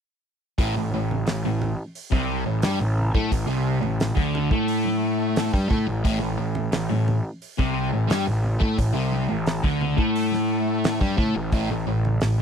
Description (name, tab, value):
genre	psychedelic rock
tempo	88 BPM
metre	4/4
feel	straight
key	A minor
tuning	A4 = 438 Hz
part	fuzz guitar	riff	0.6-12.4 s	A2 to A3	-23 LUFS	left 1 dB	distortion, phaser
part	fuzz picked electric bass	bass	0.6-12.4 s	A1 to A2	-27 LUFS	equal	overdrive
part	damped 70s drum kit	drums	0.6-12.4 s	hi-hat, kick drum, snare drum	-24 LUFS	equal	none
part	congas	percussion	1.1-12.4 s	none	-35 LUFS	right 4 dB	none
room	little or no reverb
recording	dry, close 1970s-style studio recording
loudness	-21 LUFS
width	side -7 dB against mid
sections	0.6-12.4 A section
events	none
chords	0.6 Am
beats	| 0.58 1.26 1.95 2.63 | 3.31 4.00 4.68 5.36 | 6.05 6.73 7.42 8.10 | 8.79 9.48 10.16 10.85 | 11.54 12.22